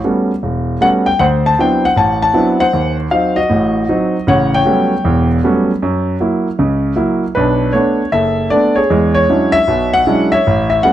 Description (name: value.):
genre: solo jazz.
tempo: 156 BPM.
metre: 4/4.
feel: swing 66% on 8ths.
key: A mixolydian.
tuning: A4 = 440 Hz.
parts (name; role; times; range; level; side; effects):
warm concert grand piano; solo; 0.0-10.9 s; E1 to A5; -11 LUFS; equal; none.
room: studio ambience.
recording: dry, close 1970s-style studio recording.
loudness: -11 LUFS.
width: side -12 dB against mid.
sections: 0.0-10.9 A section.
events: none.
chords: 0.0 A13; 1.2 D13; 2.7 D#dim7; 4.3 A13; 5.8 F#7; 7.4 Bm7; 8.9 E13.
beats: 0.03 0.41 0.80 | 1.18 1.57 1.96 2.34 | 2.73 3.11 3.50 3.88 | 4.27 4.65 5.04 5.42 | 5.81 6.19 6.58 6.97 | 7.35 7.74 8.12 8.51 | 8.89 9.28 9.67 10.05 | 10.44 10.82.